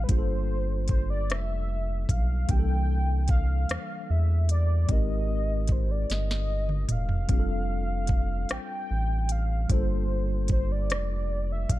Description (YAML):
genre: slow six-eight R&B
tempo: 50 BPM (dotted quarters)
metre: 6/8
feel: straight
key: unclear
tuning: A4 = 440 Hz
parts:
  - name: warm velvety synth lead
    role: melody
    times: 0.0-11.8 s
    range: B4 to G5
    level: -35 LUFS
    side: left 1 dB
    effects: chorus
  - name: mellow tine electric piano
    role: accompaniment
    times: 0.0-11.8 s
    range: E3 to Bb4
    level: -35 LUFS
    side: equal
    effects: medium stereo tremolo
  - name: round analog bass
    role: bass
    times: 0.0-11.8 s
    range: E1 to E2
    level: -27 LUFS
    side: equal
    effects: none
  - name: smooth R&B drum kit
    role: drums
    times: 0.1-11.8 s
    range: hi-hat, kick drum, rim click, snare drum, toms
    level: -26 LUFS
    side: equal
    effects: none
room: little or no reverb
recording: dark, warm production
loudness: -24 LUFS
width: side -16 dB against mid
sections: 0.0-11.8 A section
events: drum fill 6.1-7.3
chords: 0.1 Gm9; 2.5 C13; 4.9 Abmaj9; 7.3 F69; 9.7 Gm9